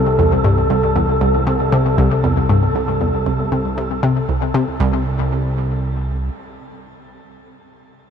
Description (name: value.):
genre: ambient, sequencer-driven space music.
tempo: 117 BPM.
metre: 4/4.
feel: straight.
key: C major.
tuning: A4 = 441 Hz.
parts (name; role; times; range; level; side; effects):
analog pluck; riff; 0.0-5.0 s; C2 to C3; -18 LUFS; left 1 dB; chorus, ping-pong delay, shimmer reverb.
fat analog bass; bass; 0.0-6.3 s; C2; -20 LUFS; right 1 dB; none.
wind-like tuned noise texture; texture; 0.0-4.8 s; A4; -21 LUFS; equal; built-in reverb, shimmer reverb.
room: moderate huge ambient reverb, RT60 6.9 s.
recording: none.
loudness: -15 LUFS.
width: side -7 dB against mid.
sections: 0.0-4.8 A section; 4.8-8.1 B section.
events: none.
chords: none.